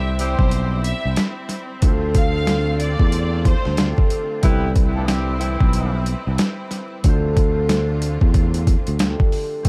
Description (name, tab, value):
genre	hip hop, boom-bap hip-hop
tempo	92 BPM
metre	4/4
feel	swing 61% on 16ths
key	unclear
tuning	A4 = 440 Hz
part	rich studio violin section	melody	0.0-3.8 s	C5 to F5	-32 LUFS	equal	dub echo
part	concert harp	accompaniment	0.0-9.7 s	D3 to C5	-30 LUFS	equal	cassette tape, dub echo
part	rich studio string section	sustained chords	0.0-9.6 s	D3 to B4	-35 LUFS	equal	none
part	warm horn section	stabs	0.0-6.0 s	E3 to B4	-32 LUFS	equal	dub echo
part	fingered electric bass	bass	0.0-9.7 s	B1 to E2	-24 LUFS	equal	none
part	boom bap sampler-style drum kit	drums	0.2-9.7 s	hi-hat, kick drum, snare drum	-20 LUFS	equal	overdrive
room	small room ambience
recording	echo-heavy mix, vinyl crackle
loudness	-19 LUFS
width	mono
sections	0.0-9.7 A section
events	none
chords	0.0 Cmaj7; 1.8 Dm7; 4.4 Cmaj7; 7.0 Dm7